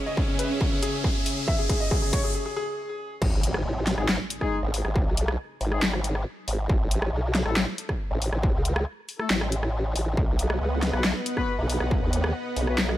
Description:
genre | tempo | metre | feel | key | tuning
heavy wobble dubstep | 138 BPM | 4/4 | half-time | unclear | A4 = 440 Hz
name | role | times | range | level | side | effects
bright grand piano | melody | 0.0-3.1 s | C#4 to E5 | -31 LUFS | left 1 dB | tape echo
supersaw pad | sustained chords | 0.0-2.3, 10.2-13.0 s | C#3 to F#5 | -32 LUFS | right 1 dB | vintage 12-bit sampler grit, sidechain pumping
riser and impact | sound effects | 0.0-5.0 s | none | -33 LUFS | equal | none
electronic kick drum | drums | 0.2-12.0 s | none | -25 LUFS | equal | distortion
dubstep drum kit | drums | 0.4-13.0 s | crash cymbal, handclaps, hi-hat, rim click, snare drum | -28 LUFS | left 1 dB | high-pass filter on hats, high-pass filter on snare, high-pass filter on cymbals
formant-sweep wobble bass | bass | 3.2-13.0 s | G#1 to D#2 | -26 LUFS | equal | chorus, overdrive
mellow brass ensemble | stabs | 4.0-12.8 s | G#3 to B4 | -33 LUFS | left 5 dB | tape echo
room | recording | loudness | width
little or no reverb | none | -23 LUFS | side -14 dB against mid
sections
0.0-3.2 A section; 3.2-13.0 B section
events
build-up 0.0-3.2; drum fill 0.0-2.3; riser 0.0-2.3; break 2.3-3.2; drop 3.2-13.0; impact 3.2-5.0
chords
0.0 C#m; 3.2 N.C.; 10.2 B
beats
0.17 0.61 1.04 | 1.48 1.91 2.35 2.78 | 3.22 3.65 4.09 4.52 | 4.96 5.39 5.83 6.26 | 6.70 7.13 7.57 8.00 | 8.43 8.87 9.30 9.74 | 10.17 10.61 11.04 11.48 | 11.91 12.35 12.78

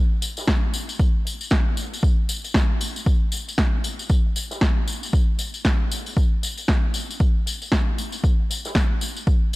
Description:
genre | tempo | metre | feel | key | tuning
house | 116 BPM | 4/4 | swing 59% on 16ths | none | none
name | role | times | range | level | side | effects
open jazz drum kit | drums | 0.1-9.6 s | hi-hat, snare drum | -44 LUFS | right 2 dB | sidechain pumping on hats, high-pass filter on hats, low-pass filter on hats, high-pass filter on snare, low-pass filter on snare, high-pass filter on room, low-pass filter on room
tambourine | percussion | 0.2-9.6 s | none | -30 LUFS | left 3 dB | none
electronic kick drum | drums | 0.5-9.4 s | none | -20 LUFS | equal | overdrive
electronic snare drum | drums | 0.5-8.9 s | none | -26 LUFS | equal | none
room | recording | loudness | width
small room ambience | dry, gritty hardware recording | -20 LUFS | side -20 dB against mid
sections
0.0-9.6 A section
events
none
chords
none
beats
0.48 | 1.00 1.51 2.03 2.55 | 3.06 3.58 4.10 4.62 | 5.13 5.65 6.17 6.68 | 7.20 7.72 8.24 8.75 | 9.27

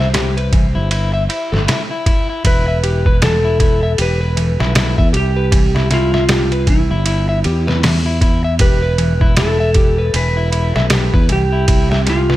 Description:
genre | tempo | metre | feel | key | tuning
trip hop | 78 BPM | 4/4 | swing 60% on 16ths | E phrygian | A4 = 440 Hz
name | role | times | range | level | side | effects
clean lap steel guitar | melody | 0.0-12.4 s | E4 to C5 | -20 LUFS | right 1 dB | dub echo
electric guitar at the edge of break-up | arpeggios | 0.0-12.4 s | E3 to E5 | -22 LUFS | left 3 dB | vintage 12-bit sampler grit, dub echo
fingered electric bass | bass | 0.0-12.4 s | E1 to E2 | -16 LUFS | equal | none
trip hop sampler-style drum kit | drums | 0.0-12.4 s | hi-hat, kick drum, ride cymbal, snare drum | -16 LUFS | equal | none
room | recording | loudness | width
digital ambience | none | -12 LUFS | side -15 dB against mid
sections
0.0-12.4 A section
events
none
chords
0.0 C; 2.5 Em; 5.5 C; 8.6 Em; 11.7 C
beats
0.15 0.92 1.68 | 2.45 3.22 3.99 4.76 | 5.53 6.30 7.07 7.84 | 8.61 9.38 10.15 10.91 | 11.68

